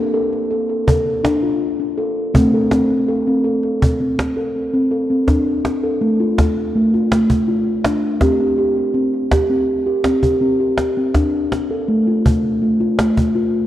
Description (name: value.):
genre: world meditative, meditative tuned percussion.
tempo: 82 BPM.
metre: 4/4.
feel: straight.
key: D minor.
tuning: A4 = 440 Hz.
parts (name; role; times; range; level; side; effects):
steel tongue drum; arpeggios; 0.0-13.7 s; A3 to A4; -16 LUFS; equal; ping-pong delay.
cajon; percussion; 0.3-13.3 s; none; -19 LUFS; equal; none.
room: wet echo chamber reverb, RT60 2.5 s.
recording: worn, warbling old tape, cassette tape, warbly pitch drift.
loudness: -15 LUFS.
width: side -13 dB against mid.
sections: 0.0-5.3 A section; 5.3-13.7 B section.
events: none.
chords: 0.0 Bb; 2.3 Am; 5.3 Dm; 8.2 C5; 11.1 Dm.